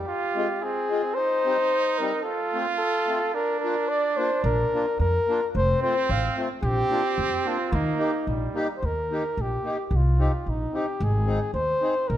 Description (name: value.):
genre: alpine folk, alpine dance band.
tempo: 110 BPM.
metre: 2/4.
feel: straight.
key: Eb major.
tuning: A4 = 440 Hz.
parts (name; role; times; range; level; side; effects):
warm flugelhorn; melody; 0.0-12.2 s; Eb4 to F5; -25 LUFS; left 1 dB; none.
mellow trumpet; second line; 0.0-8.8 s; G3 to F4; -29 LUFS; right 6 dB; none.
upright bass; bass; 0.0, 4.4-12.2 s; F1 to F2; -25 LUFS; equal; none.
accordion; accompaniment; 0.4-11.9 s; G3 to Ab4; -32 LUFS; left 2 dB; none.
room: light reverb.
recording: dark, warm production.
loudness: -22 LUFS.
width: side -11 dB against mid.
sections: 0.1-8.8 A section; 8.8-12.2 B section.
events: none.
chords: 0.1 Fmadd9; 1.2 Cm; 2.3 F; 3.3 Bb; 5.5 F; 6.6 Bb; 7.7 Eb; 9.9 Cm; 11.0 Ab.